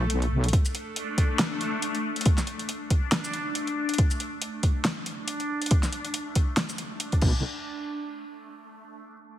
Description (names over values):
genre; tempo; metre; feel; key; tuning
deep dubstep; 139 BPM; 4/4; swing 57% on 16ths, half-time; unclear; A4 = 441 Hz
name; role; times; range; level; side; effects
wobble bass; bass; 0.0-0.5, 7.2-7.4 s; B1; -24 LUFS; equal; chorus
backwards swelling texture; texture; 0.0-7.5 s; A3 to A4; -32 LUFS; left 1 dB; built-in reverb
deep house drum kit; drums; 0.1-7.3 s; crash cymbal, hi-hat, shaker, snare drum; -29 LUFS; equal; studio reverb
electronic kick drum; drums; 0.5-7.3 s; none; -22 LUFS; equal; studio reverb
room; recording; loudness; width
light reverb, digital ambience; heavily compressed radio sound; -24 LUFS; side -12 dB against mid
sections
0.0-7.4 A section; 7.4-9.2 B section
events
none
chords
none